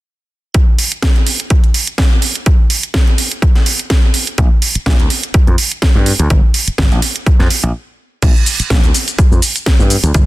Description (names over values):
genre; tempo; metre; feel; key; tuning
filtered disco house; 125 BPM; 4/4; swing 55% on 16ths; Bb major; A4 = 440 Hz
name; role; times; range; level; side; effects
electronic kick drum; drums; 0.5-10.3 s; none; -11 LUFS; equal; overdrive
house drum kit; drums; 0.5-10.3 s; crash cymbal, hi-hat, shaker, snare drum; -16 LUFS; right 2 dB; overdrive, sidechain pumping on hats, sidechain pumping on cymbals, sidechain pumping on perc
slap bass; bass; 4.4-10.2 s; G1 to G2; -15 LUFS; equal; sidechain pumping, low-pass filter
room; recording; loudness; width
little or no reverb; dense, heavily limited modern master; -10 LUFS; side -18 dB against mid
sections
0.5-8.2 A section; 8.2-10.3 B section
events
stop 7.7-8.2; filter sweep on slap bass 8.2-10.3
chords
none